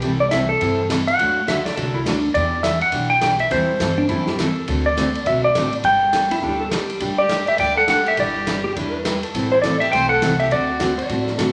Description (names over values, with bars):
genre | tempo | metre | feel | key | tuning
country, western swing | 206 BPM | 4/4 | swing 61% on 8ths | G major | A4 = 440 Hz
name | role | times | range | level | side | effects
pedal steel guitar | second line | 0.0-11.5 s | D4 to E5 | -28 LUFS | equal | none
picked steel-string acoustic guitar | accompaniment | 0.0-11.5 s | C3 to B4 | -26 LUFS | equal | none
upright bass | bass | 0.0-11.5 s | G1 to G2 | -31 LUFS | equal | none
vintage drum kit | drums | 0.0-11.5 s | hi-hat, kick drum, ride cymbal, snare drum | -29 LUFS | equal | none
clean lap steel guitar | melody | 0.2-11.1 s | A4 to G5 | -21 LUFS | equal | none
clear fiddle | second line | 7.2-11.1 s | E4 to D5 | -28 LUFS | equal | none
room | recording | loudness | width
wet large studio reverb, RT60 0.8 s | none | -19 LUFS | mono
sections
0.0-11.5 A section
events
none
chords
0.0 C6; 1.2 D; 2.3 Em7; 3.5 Am7/E; 4.7 D7; 5.8 Gadd9; 7.0 Gsus2; 8.2 Em7/G; 9.3 Am; 10.5 D7